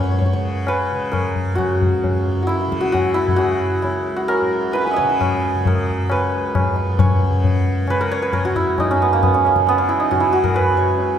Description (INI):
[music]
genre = indian classical, Hindustani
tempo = 134 BPM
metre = 4/4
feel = straight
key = C# raga bageshri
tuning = A4 = 440 Hz
[part]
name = santur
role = melody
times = 0.0-11.2 s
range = A#3 to D#6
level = -19 LUFS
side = right 2 dB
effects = none
[part]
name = tanpura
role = drone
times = 0.0-11.2 s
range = C#2 to C#3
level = -27 LUFS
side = left 1 dB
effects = none
[part]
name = tabla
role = percussion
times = 0.2-11.1 s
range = none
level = -20 LUFS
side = left 2 dB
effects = none
[sound]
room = wet recital hall reverb, RT60 1.5 s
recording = heard from further back in the room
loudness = -16 LUFS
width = side -9 dB against mid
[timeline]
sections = 0.0-11.2 A section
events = speeding up 0.0-11.2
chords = none